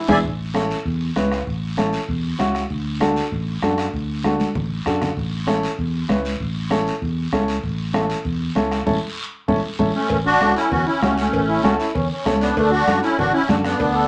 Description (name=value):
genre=latin, cumbia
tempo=195 BPM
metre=4/4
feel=straight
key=A major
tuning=A4 = 439 Hz
part: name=clear trombone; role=second line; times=0.0-0.2, 11.5-14.1 s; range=C#4 to A4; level=-27 LUFS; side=equal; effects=none
part: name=musette accordion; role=melody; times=0.1-0.2, 9.9-14.1 s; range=A3 to G#5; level=-20 LUFS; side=equal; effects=none
part: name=dark upright piano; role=accompaniment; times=0.1-13.7 s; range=C#4 to B4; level=-25 LUFS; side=equal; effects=none
part: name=fingered electric bass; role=bass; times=0.1-14.0 s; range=A1 to F#2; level=-27 LUFS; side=equal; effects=none
part: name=bombo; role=percussion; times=0.1-14.0 s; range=none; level=-34 LUFS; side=equal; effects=none
part: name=congas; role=percussion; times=0.1-14.0 s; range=none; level=-28 LUFS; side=equal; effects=none
part: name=guiro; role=percussion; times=0.1-14.1 s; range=none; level=-36 LUFS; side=equal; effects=none
part: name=timbales and cowbell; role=percussion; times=0.1-0.2, 10.1-14.0 s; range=none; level=-30 LUFS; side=equal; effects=none
room=wet small room reverb, RT60 0.5 s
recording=none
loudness=-21 LUFS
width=mono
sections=0.2-10.1 A section; 10.1-14.1 B section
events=drum fill 0.0, 4.4-5.2; band accent 0.0, 8.9-10.1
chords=0.2 A; 2.7 D; 5.2 A; 12.6 D